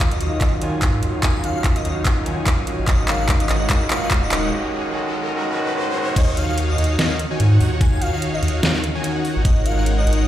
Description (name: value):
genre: future bass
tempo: 146 BPM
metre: 4/4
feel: swing 56% on 16ths, half-time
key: unclear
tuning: A4 = 440 Hz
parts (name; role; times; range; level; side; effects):
- overdriven tine electric piano; accompaniment; 0.0-6.2 s; Eb3 to Gb4; -28 LUFS; right 2 dB; sidechain pumping, tape echo
- shimmering ambient pad; sustained chords; 0.0-10.3 s; Eb3 to Gb4; -35 LUFS; right 2 dB; none
- big bright polysynth; riff; 0.0-10.3 s; Eb3 to Ab5; -25 LUFS; left 1 dB; sidechain pumping
- saturated sub bass; bass; 0.0-10.3 s; Eb1 to Ab2; -20 LUFS; equal; sidechain pumping
- dubstep drum kit; drums; 0.0-10.2 s; crash cymbal, handclaps, hi-hat, snare drum; -24 LUFS; equal; none
- electronic kick drum; drums; 0.0-9.5 s; none; -18 LUFS; equal; none
- riser; sound effects; 1.8-6.2 s; none; -32 LUFS; left 1 dB; none
- airy dreamy lead; melody; 0.1-10.3 s; Eb5 to Ab5; -29 LUFS; equal; chorus, sidechain pumping, tape echo
room: light reverb, digital ambience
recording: played on a big sound system in a bare room, large studio reverb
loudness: -17 LUFS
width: side -12 dB against mid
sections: 0.0-6.2 A section; 6.2-10.3 B section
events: build-up 0.0-6.2; drum fill 0.0-4.5; filter sweep on analog polysynth 0.0-6.2; riser 1.8-6.2; break 4.5-6.2; drop 6.2-10.3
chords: 0.0 Ebm9; 2.9 Ab7sus4; 6.2 Ebm9; 9.5 Ab7sus4